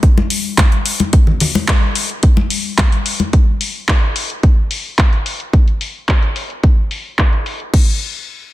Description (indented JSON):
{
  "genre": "nu-disco",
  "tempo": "109 BPM",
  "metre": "4/4",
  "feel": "straight",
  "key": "none",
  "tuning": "none",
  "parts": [
    { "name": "electronic kick drum", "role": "drums", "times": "0.0-7.8 s", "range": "none", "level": "-12 LUFS", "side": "equal", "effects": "studio reverb" },
    { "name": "house drum kit", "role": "drums", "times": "0.0-7.8 s", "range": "crash cymbal, handclaps, hi-hat", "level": "-19 LUFS", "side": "left 1 dB", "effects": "low-pass filter on hats, studio reverb, soft clipping on snare, low-pass filter on snare, low-pass filter on cymbals" },
    { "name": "congas", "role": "percussion", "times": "0.2-3.3 s", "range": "none", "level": "-20 LUFS", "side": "left 4 dB", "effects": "none" }
  ],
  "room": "little or no reverb",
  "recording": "dense, heavily limited modern master",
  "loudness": "-13 LUFS",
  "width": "side -16 dB against mid",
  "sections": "0.0-7.7 A section",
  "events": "none",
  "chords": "none",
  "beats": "0.03 0.58 | 1.13 1.68 2.23 2.78 | 3.33 3.88 4.43 4.98 | 5.53 6.08 6.63 7.18 | 7.73"
}